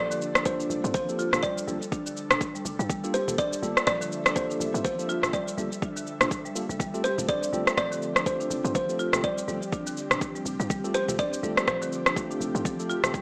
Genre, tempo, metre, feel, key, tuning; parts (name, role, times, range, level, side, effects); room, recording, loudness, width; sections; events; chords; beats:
afro house; 123 BPM; 4/4; swing 58% on 16ths; G dorian; A4 = 441 Hz
kalimba; melody; 0.0-13.2 s; C5 to D5; -30 LUFS; equal; dub echo
ethereal airy pad; sustained chords; 0.1-13.2 s; F3 to E5; -38 LUFS; equal; ensemble chorus, built-in reverb, sidechain pumping
marimba with medium mallets; arpeggios; 0.0-13.2 s; D3 to G4; -33 LUFS; equal; sidechain pumping, dub echo
mellow tine electric piano; stabs; 0.0-13.1 s; A3 to C5; -34 LUFS; equal; analog chorus, sidechain pumping, dub echo
afro-pop drum kit; drums; 0.1-13.2 s; cabasa, rim click, toms; -26 LUFS; equal; studio reverb
electronic kick drum; drums; 0.5-13.2 s; -33 LUFS; equal; studio reverb
warm 808-style bass; bass; 0.7-13.1 s; F1 to G2; -33 LUFS; equal; sidechain pumping
light reverb; small speaker sound; -24 LUFS; side -33 dB against mid
0.0-13.2 A section
0.0 Gm7; 6.8 Fadd9
0.46 | 0.94 1.43 1.92 2.41 | 2.90 3.38 3.87 4.36 | 4.85 5.33 5.82 6.31 | 6.80 7.29 7.77 8.26 | 8.75 9.24 9.72 10.21 | 10.70 11.19 11.68 12.16 | 12.65 13.14